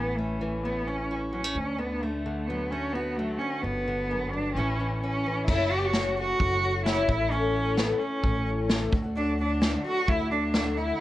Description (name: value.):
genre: indie folk with a building arrangement.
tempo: 130 BPM.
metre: 4/4.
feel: straight.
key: D major.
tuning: A4 = 441 Hz.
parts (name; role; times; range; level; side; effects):
warm cello; melody; 0.0-11.0 s; A3 to G4; -28 LUFS; equal; digital delay.
fingerpicked steel-string acoustic guitar; accompaniment; 0.0-5.5 s; D2 to F#4; -32 LUFS; left 1 dB; none.
upright bass; bass; 0.0-10.9 s; F#1 to D2; -32 LUFS; equal; none.
picked twelve-string acoustic guitar; accompaniment; 5.5-11.0 s; F#2 to A4; -32 LUFS; left 5 dB; none.
unplugged drum kit; drums; 5.5-10.6 s; crash cymbal, kick drum, snare drum; -28 LUFS; equal; none.
room: light reverb.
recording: worn, warbling old tape, cassette tape, warbly pitch drift.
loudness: -25 LUFS.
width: side -14 dB against mid.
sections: 0.0-5.5 A section; 5.5-11.0 B section.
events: none.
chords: 0.0 A; 1.6 D; 3.6 G; 4.6 A; 5.5 F#m; 7.1 A; 8.9 D.